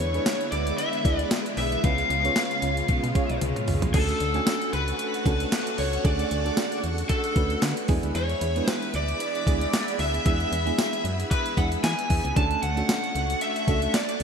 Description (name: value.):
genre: 1980s-style pop.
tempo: 114 BPM.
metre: 4/4.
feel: swing 55% on 16ths.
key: unclear.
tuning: A4 = 438 Hz.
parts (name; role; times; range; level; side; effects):
lead guitar through a small cranked amp; melody; 0.0-14.2 s; A4 to A5; -28 LUFS; left 1 dB; overdrive.
FM electric piano with tremolo; accompaniment; 0.0-14.2 s; G#3 to G#5; -32 LUFS; right 5 dB; none.
raw garage guitar; accompaniment; 0.0-14.2 s; C#3 to E4; -36 LUFS; left 2 dB; overdrive, wide subtle chorus.
string machine, violins; sustained chords; 0.0-14.2 s; C#3 to C#6; -34 LUFS; equal; ensemble chorus.
solid FM bass; bass; 0.0-14.2 s; B1 to E3; -28 LUFS; equal; none.
clean 12-bit digital drum machine; drums; 0.0-14.2 s; crash cymbal, hi-hat, kick drum, snare drum, tambourine, toms; -26 LUFS; equal; gated reverb.
room: moderate lush hall reverb, RT60 1.6 s.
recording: bright 1980s-style digital production.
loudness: -22 LUFS.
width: side -6 dB against mid.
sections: 0.0-3.9 A section; 3.9-14.2 A section.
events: drum fill 3.4-3.9.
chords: 0.0 E7; 1.8 C#7; 3.9 Dmaj7; 7.9 E7; 12.4 Dmaj7.